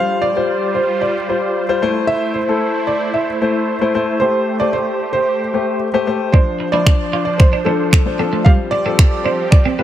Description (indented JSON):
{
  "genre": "dance-pop",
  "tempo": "113 BPM",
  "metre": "4/4",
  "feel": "straight",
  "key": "C major",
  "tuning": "A4 = 440 Hz",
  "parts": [
    { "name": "warm concert grand piano", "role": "melody", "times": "0.0-9.8 s", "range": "A4 to F5", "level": "-20 LUFS", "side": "right 1 dB", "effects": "tape echo" },
    { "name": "clear grand piano", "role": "accompaniment", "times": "0.0-9.8 s", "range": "F3 to C5", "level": "-19 LUFS", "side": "left 4 dB", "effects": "sidechain pumping" },
    { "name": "filtered supersaw swell", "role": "sustained chords", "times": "0.0-9.8 s", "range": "F3 to C5", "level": "-23 LUFS", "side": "right 2 dB", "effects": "sidechain pumping" },
    { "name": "twelve-string electric guitar", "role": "riff", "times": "6.3-9.8 s", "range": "G3 to F4", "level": "-23 LUFS", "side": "right 6 dB", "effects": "wide subtle chorus" },
    { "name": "smooth R&B drum kit", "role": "drums", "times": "6.3-9.6 s", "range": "finger snaps, kick drum", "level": "-11 LUFS", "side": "equal", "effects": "none" }
  ],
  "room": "light reverb",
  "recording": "none",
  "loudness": "-14 LUFS",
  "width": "side -11 dB against mid",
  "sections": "0.0-9.8 A section",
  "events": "none",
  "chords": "0.0 G7sus4; 1.8 C6; 4.2 Am7; 6.3 Dm7; 8.5 G7sus4",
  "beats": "0.50 1.03 1.56 | 2.09 2.62 3.15 3.68 | 4.21 4.74 5.28 5.81 | 6.34 6.87 7.40 7.93 | 8.46 8.99 9.52"
}